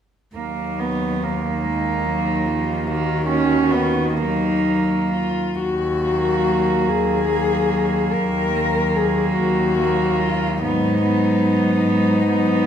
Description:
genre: classical, lyrical piece for cello ensemble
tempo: 40-50 BPM (dotted quarters)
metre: 12/8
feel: rubato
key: Eb minor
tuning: A4 = 440 Hz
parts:
  - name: warm cello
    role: second line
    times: 0.3-12.7 s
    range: Bb3 to Db4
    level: -23 LUFS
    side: right 6 dB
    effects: none
  - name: warm cello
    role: melody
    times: 0.4-12.7 s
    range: Eb4 to Bb4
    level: -22 LUFS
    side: left 5 dB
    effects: none
  - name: warm cello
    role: accompaniment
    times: 0.4-12.7 s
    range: Eb3 to Ab3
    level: -24 LUFS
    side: left 2 dB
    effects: none
  - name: warm cello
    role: bass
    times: 0.4-12.7 s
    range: Eb2 to Ab2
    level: -24 LUFS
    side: right 2 dB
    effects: none
room: wet recital hall reverb, RT60 1.4 s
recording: heard from further back in the room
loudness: -17 LUFS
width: side -8 dB against mid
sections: 0.4-5.6 A section; 5.6-12.7 B section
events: none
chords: 0.4 Ebm; 10.6 Abm7

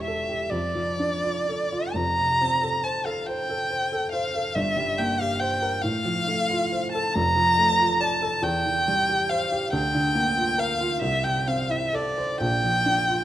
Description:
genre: classical, romantic duo for violin and grand piano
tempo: 46 BPM (dotted quarters)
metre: 6/8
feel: uneven beats, rubato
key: D minor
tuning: A4 = 440 Hz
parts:
  - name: warm violin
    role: melody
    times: 0.0-13.2 s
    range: D5 to Bb5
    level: -23 LUFS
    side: equal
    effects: none
  - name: warm baby grand piano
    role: accompaniment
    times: 0.0-13.2 s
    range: E1 to D5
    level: -27 LUFS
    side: equal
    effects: none
room: light reverb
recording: close, detailed microphones, vinyl crackle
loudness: -22 LUFS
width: side -12 dB against mid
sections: 0.0-13.2 A section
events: none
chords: 0.0 A7(no3)/E; 0.5 Dm/F; 1.9 F; 4.6 C5/G; 5.8 F/A; 7.1 Dm/F; 8.4 C/E; 9.7 Bb/D; 11.0 Am/C; 12.4 Bb

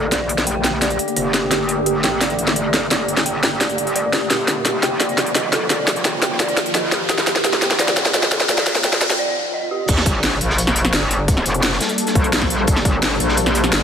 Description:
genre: dark technical drum and bass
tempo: 172 BPM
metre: 4/4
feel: straight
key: G minor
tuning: A4 = 440 Hz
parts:
  - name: swarming drone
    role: sustained chords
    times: 0.0-13.8 s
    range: D3 to A4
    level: -25 LUFS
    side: equal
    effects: built-in reverb, sidechain pumping
  - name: dark detuned synth bell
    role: arpeggios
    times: 0.0-9.8 s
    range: G4 to G5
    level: -24 LUFS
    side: right 1 dB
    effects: chorus, sidechain pumping, low-pass filter, tape echo
  - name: metallic wobble bass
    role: bass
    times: 0.0-13.8 s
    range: Eb1 to Eb2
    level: -23 LUFS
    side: equal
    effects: chorus, overdrive
  - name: riser and sub drop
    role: sound effects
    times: 2.4-11.3 s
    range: none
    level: -28 LUFS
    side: equal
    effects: none
  - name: drum and bass drum kit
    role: drums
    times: 0.1-13.8 s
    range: crash cymbal, hi-hat, snare drum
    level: -18 LUFS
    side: equal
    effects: small room ambience
  - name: crunchy breakbeat drum kit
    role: drums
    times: 9.9-13.8 s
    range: hi-hat, snare drum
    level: -26 LUFS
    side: equal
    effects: high-pass filter on hats, small room ambience, high-pass filter on snare, high-pass filter on room
  - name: electronic kick drum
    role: drums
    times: 9.9-12.9 s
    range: none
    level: -18 LUFS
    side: equal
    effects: overdrive, small room ambience
room: moderate lush hall reverb, RT60 2.1 s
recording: dense, heavily limited modern master, high-pass filter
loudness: -15 LUFS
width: side -8 dB against mid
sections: 0.0-9.9 A section; 9.9-13.8 B section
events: build-up 0.0-9.9; drum fill 0.0-9.2; break 9.2-9.9; drop 9.9-13.8; impact 9.9-11.3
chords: 0.0 Gmadd9; 4.3 Ebsus2; 9.9 Gmadd9

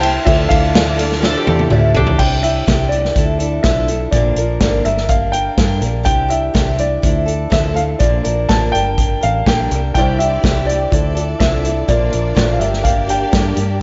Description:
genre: folk rock and heartland rock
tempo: 124 BPM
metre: 4/4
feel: straight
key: D minor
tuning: A4 = 439 Hz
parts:
  - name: dark concert grand piano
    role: melody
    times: 0.0-13.5 s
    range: D5 to A5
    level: -22 LUFS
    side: equal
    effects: slapback echo, tape echo
  - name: dark upright piano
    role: accompaniment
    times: 0.0-2.1, 10.0-13.8 s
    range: E4 to F5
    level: -29 LUFS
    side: equal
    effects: none
  - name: picked old ladder-braced acoustic guitar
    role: accompaniment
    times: 0.0-13.8 s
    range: G2 to C5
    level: -24 LUFS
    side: equal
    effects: slapback echo
  - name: clear symphonic string section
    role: sustained chords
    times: 0.0-2.2, 10.0-13.8 s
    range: D4 to E5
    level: -30 LUFS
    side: equal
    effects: none
  - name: fingered electric bass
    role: bass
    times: 0.0-13.8 s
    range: G1 to G2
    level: -22 LUFS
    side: equal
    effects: none
  - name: natural country drum kit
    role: drums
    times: 0.0-13.7 s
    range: crash cymbal, hi-hat, kick drum, ride cymbal, snare drum, toms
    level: -19 LUFS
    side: equal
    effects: none
  - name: mandolin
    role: second line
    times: 1.2-2.2 s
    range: D4 to A4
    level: -24 LUFS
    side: equal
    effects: slapback echo
room: moderate lush hall reverb, RT60 2.1 s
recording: big arena sound, nothing above 7.7 kHz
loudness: -15 LUFS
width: mono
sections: 0.0-2.2 A section; 2.2-13.8 B section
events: drum fill 1.2-2.2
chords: 0.3 Dmadd9; 2.2 Cadd9; 3.2 Dmadd9; 4.1 Bb; 4.9 Gm; 6.1 Cadd9; 7.0 Dmadd9; 8.0 Bb; 8.7 Gm; 9.9 Cadd9; 10.9 Dmadd9; 11.9 Bb; 12.6 Gm

